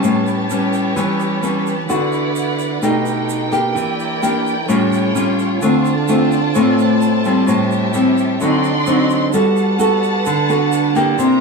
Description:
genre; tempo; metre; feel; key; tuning
bossa nova; 129 BPM; 4/4; straight; unclear; A4 = 440 Hz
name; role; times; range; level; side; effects
nylon-string guitar; accompaniment; 0.0-11.4 s; A2 to A4; -15 LUFS; equal; none
warm symphonic violin section; sustained chords; 0.0-11.4 s; G3 to C6; -22 LUFS; right 1 dB; none
egg shaker; percussion; 0.0-11.4 s; none; -34 LUFS; right 7 dB; none
room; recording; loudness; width
moderate studio reverb, RT60 0.7 s; none; -14 LUFS; side -4 dB against mid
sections
0.0-9.3 A section; 9.3-11.4 B section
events
none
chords
0.0 A9; 1.9 D69; 2.8 B7alt; 3.8 Em7b5; 4.7 Aaug7; 5.6 Dm7; 7.5 Am7; 8.4 D7b9; 9.3 Gmaj9

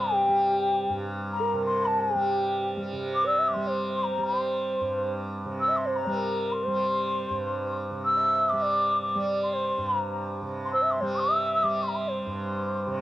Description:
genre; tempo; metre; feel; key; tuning
indian classical, Hindustani; free time; none; none; G raga bageshri; A4 = 442 Hz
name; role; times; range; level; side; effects
breathy mellow bansuri; melody; 0.0-13.0 s; G5 to E6; -26 LUFS; left 1 dB; cassette tape
pure sine lead; second line; 0.0-13.0 s; G4 to E5; -30 LUFS; right 1 dB; chorus, cassette tape
tanpura; drone; 0.0-13.0 s; G2 to G3; -32 LUFS; right 1 dB; cassette tape
room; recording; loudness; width
light reverb, small room ambience; home recording on cassette; -24 LUFS; side -15 dB against mid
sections
0.0-3.0 A section; 3.0-13.0 A section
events
none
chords
none

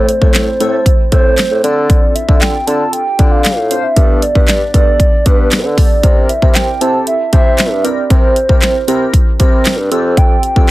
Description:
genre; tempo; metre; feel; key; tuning
dance-pop; 116 BPM; 4/4; straight; unclear; A4 = 440 Hz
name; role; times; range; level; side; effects
hollow clarinet-like synth lead; melody; 0.0-10.7 s; B4 to A5; -16 LUFS; right 2 dB; chorus, ping-pong delay
glassy digital keys; accompaniment; 0.0-10.7 s; A3 to C5; -20 LUFS; equal; chorus, sidechain pumping
mellow bassoon; bass; 0.0-10.7 s; F2 to D3; -16 LUFS; equal; sidechain pumping
pop drum kit; drums; 0.1-10.7 s; handclaps, hi-hat, kick drum, snare drum; -10 LUFS; equal; none
room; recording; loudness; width
little or no reverb; dense, heavily limited modern master; -9 LUFS; side -17 dB against mid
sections
0.0-10.7 A section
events
none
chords
0.0 Am; 1.6 Dm7; 4.0 Gadd9; 6.0 C7; 9.9 Fadd9

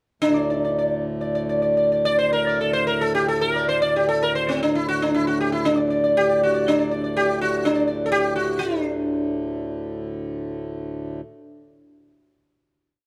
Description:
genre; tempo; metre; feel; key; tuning
indian classical, Hindustani; 106-138 BPM; 4/4; straight; D raga charukeshi; A4 = 440 Hz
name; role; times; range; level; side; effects
sitar; melody; 0.2-11.9 s; C4 to D5; -22 LUFS; equal; none
pedal harmonium; drone; 0.2-11.2 s; D2 to A2; -30 LUFS; equal; none
room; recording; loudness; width
light reverb; close, detailed microphones; -22 LUFS; mono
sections
0.2-8.6 climax; 8.6-10.4 final chord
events
speeding up 0.2-10.4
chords
none

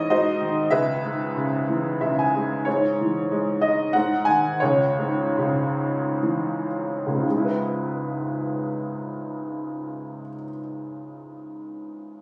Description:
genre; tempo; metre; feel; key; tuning
classical, lyrical solo piano; 51-99 BPM; 3/4; rubato; C# minor; A4 = 440 Hz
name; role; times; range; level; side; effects
clear upright piano; solo; 0.0-12.2 s; C#2 to G#5; -25 LUFS; equal; none
room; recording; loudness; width
light reverb; recorded on a phone in the room, studio reverb, compression; -24 LUFS; mono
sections
0.0-2.7 A section; 2.7-7.3 B section; 7.3-12.2 C section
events
upright piano fill 1.7-2.7; slowing down 2.7-7.3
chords
0.1 G#7; 0.7 C#m7; 2.7 C#m/G#; 3.9 G#5; 4.6 C#m; 7.3 C#m7

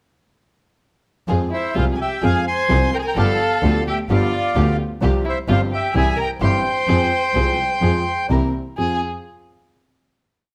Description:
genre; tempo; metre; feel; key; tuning
tango; 128 BPM; 4/4; rubato; F harmonic minor; A4 = 440 Hz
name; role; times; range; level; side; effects
warm baby grand piano; accompaniment; 1.3-9.0 s; G1 to Ab4; -26 LUFS; equal; none
dark chamber string section; stabs; 1.3-9.0 s; B3 to Bb4; -33 LUFS; equal; none
rich double bass; bass; 1.3-9.0 s; G1 to F2; -23 LUFS; equal; none
bandoneon; melody; 1.5-9.0 s; C5 to C6; -24 LUFS; equal; none
warm violin; second line; 1.5-9.0 s; E4 to C5; -28 LUFS; equal; none
room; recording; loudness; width
moderate large studio reverb, RT60 1.1 s; none; -19 LUFS; mono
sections
1.3-8.8 A section; 8.8-10.5 final chord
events
none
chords
1.3 Fm; 3.2 G7; 5.0 Csus4; 5.9 C; 6.9 Fm; 8.3 C7; 8.8 Fm

